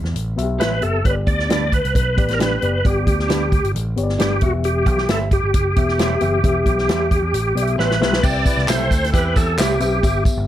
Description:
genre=uptempo 1960s-style soul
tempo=133 BPM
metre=4/4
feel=straight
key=unclear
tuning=A4 = 443 Hz
part: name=picked electric bass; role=bass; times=0.0-10.5 s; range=E1 to E2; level=-22 LUFS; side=equal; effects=none
part: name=natural country drum kit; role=drums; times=0.0-10.4 s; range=crash cymbal, hi-hat, kick drum, snare drum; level=-20 LUFS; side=equal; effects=none
part: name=mellow reed electric piano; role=accompaniment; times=0.4-10.5 s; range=G2 to E5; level=-25 LUFS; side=left 5 dB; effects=fast tremolo, plate reverb
part: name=bright tonewheel organ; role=melody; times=0.6-10.2 s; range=F#4 to D5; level=-21 LUFS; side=equal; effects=chorus vibrato, fast rotary speaker
part: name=electric guitar through a small old amp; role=stabs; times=0.6-9.7 s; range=D4 to E5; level=-28 LUFS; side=right 7 dB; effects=spring reverb, plate reverb
part: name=warm saxophone section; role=second line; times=8.2-9.6 s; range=C4 to B4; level=-27 LUFS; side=right 2 dB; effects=plate reverb
part: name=tambourine and handclaps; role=percussion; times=8.2-10.4 s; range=none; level=-30 LUFS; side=equal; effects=none
room=light reverb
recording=none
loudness=-16 LUFS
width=side -12 dB against mid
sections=0.0-8.2 A section; 8.2-10.5 B section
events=drum fill 7.8-8.2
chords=0.0 Em; 1.0 G; 4.4 Em; 8.2 Cmaj7

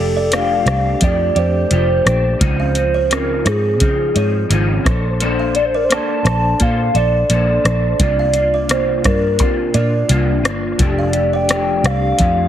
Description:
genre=indie pop, bedroom pop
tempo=86 BPM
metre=4/4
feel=swing 55% on 16ths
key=F major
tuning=A4 = 440 Hz
part: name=hollow clarinet-like synth lead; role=melody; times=0.0-12.5 s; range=Ab4 to A5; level=-18 LUFS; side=equal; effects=phaser, lush chorus
part: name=electric guitar through a small old amp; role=accompaniment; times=0.0-12.5 s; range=C3 to C5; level=-21 LUFS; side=left 2 dB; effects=ensemble chorus, warbly pitch drift
part: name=vintage muted fingered electric bass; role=bass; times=0.0-12.5 s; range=F1 to Db3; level=-18 LUFS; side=equal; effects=none
part: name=buzzing kalimba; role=second line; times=0.2-12.4 s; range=C5 to F5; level=-26 LUFS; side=right 4 dB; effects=lush chorus, ping-pong delay
part: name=soft vintage rhythm box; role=drums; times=0.3-12.4 s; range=hi-hat, kick drum, rim click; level=-19 LUFS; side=equal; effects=none
room=light reverb, digital ambience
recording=heavily compressed radio sound, multiband compression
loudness=-13 LUFS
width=side -10 dB against mid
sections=0.0-12.5 A section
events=none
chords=0.0 F69; 2.4 Dbmaj9; 4.9 Bbmaj9; 8.0 C9sus4; 10.8 F69

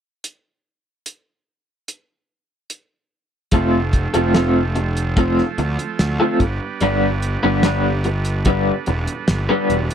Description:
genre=psychedelic rock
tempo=73 BPM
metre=4/4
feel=straight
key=unclear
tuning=A4 = 435 Hz
part: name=cloth-damped thuddy drum kit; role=drums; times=0.2-9.9 s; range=hi-hat, kick drum, snare drum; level=-20 LUFS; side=equal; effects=none
part: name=combo organ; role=sustained chords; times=3.5-9.9 s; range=F3 to B4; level=-28 LUFS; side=right 8 dB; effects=none
part: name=electric guitar through a small old amp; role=riff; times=3.5-9.8 s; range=G3 to B4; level=-17 LUFS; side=left 1 dB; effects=tremolo
part: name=fuzz picked electric bass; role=bass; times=3.5-9.9 s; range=E1 to D2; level=-22 LUFS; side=equal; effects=overdrive
room=little or no reverb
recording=dry, close 1970s-style studio recording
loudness=-16 LUFS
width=side -8 dB against mid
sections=0.2-3.5 A section; 3.5-9.9 B section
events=none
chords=0.2 N.C.; 3.5 F; 6.4 G

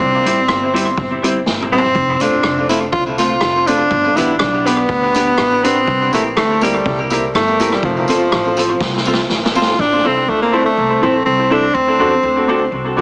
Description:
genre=ska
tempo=123 BPM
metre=4/4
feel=swing 54% on 8ths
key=F major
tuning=A4 = 440 Hz
part: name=clear tenor saxophone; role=melody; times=0.0-12.7 s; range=F3 to F4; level=-15 LUFS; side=equal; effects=tape echo
part: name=upright bass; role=bass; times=0.0-13.0 s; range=E1 to E2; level=-25 LUFS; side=equal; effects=none
part: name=semi-hollow electric guitar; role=accompaniment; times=0.3-13.0 s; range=G3 to A4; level=-21 LUFS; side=equal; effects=tape echo
part: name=clear upright piano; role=stabs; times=0.3-13.0 s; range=B3 to C5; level=-20 LUFS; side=equal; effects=tape echo
part: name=street-band drum kit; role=drums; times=0.3-9.7 s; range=hi-hat, kick drum, rim click, snare drum, toms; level=-21 LUFS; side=equal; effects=tape echo
part: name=tambourine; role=percussion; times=2.2-9.7 s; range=none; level=-34 LUFS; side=right 1 dB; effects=none
room=moderate small room reverb, RT60 0.5 s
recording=heavily compressed radio sound, small speaker sound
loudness=-12 LUFS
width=side -28 dB against mid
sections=0.0-9.8 A section; 9.8-13.0 B section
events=drum fill 1.5-2.0, 8.8-9.8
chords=0.0 C; 2.0 F; 3.9 G; 5.9 C7; 7.8 F; 9.8 Am; 11.7 D7

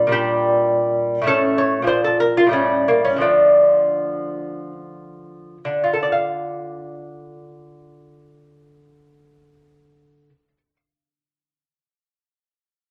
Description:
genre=classical, baroque-style dance for lute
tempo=67-107 BPM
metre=3/4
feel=rubato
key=D minor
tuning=A4 = 440 Hz
part: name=lute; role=solo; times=0.0-10.8 s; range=A2 to F5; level=-19 LUFS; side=equal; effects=none
room=moderate studio reverb, RT60 0.7 s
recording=none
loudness=-18 LUFS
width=mono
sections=0.0-5.6 A section; 5.6-10.9 B section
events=slowing down 0.4-5.6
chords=0.0 Gm/Bb; 1.3 A; 1.9 Bb; 2.5 A7; 3.2 Dm

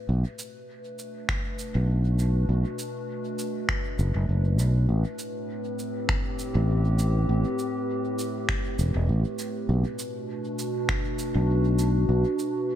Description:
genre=ambient dub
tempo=100 BPM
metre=4/4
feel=swing 55% on 16ths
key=unclear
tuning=A4 = 440 Hz
part: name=warbly tape-like pad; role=sustained chords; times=0.0-12.8 s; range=A2 to B4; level=-30 LUFS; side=equal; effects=chorus, built-in reverb
part: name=fingered electric bass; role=bass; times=0.1-12.2 s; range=E1 to B1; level=-22 LUFS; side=equal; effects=tube saturation
part: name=electronic cabasa and finger snaps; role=drums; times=0.4-12.5 s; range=none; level=-32 LUFS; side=right 1 dB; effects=studio reverb, dub echo
part: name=electronic kick drum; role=drums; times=1.3-11.0 s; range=none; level=-30 LUFS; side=equal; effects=studio reverb
room=light reverb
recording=none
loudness=-24 LUFS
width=side -11 dB against mid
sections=0.0-12.8 A section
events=fade-in on ambient pad 0.0-12.8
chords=0.1 Bm7; 4.9 Am7; 9.7 Bm7

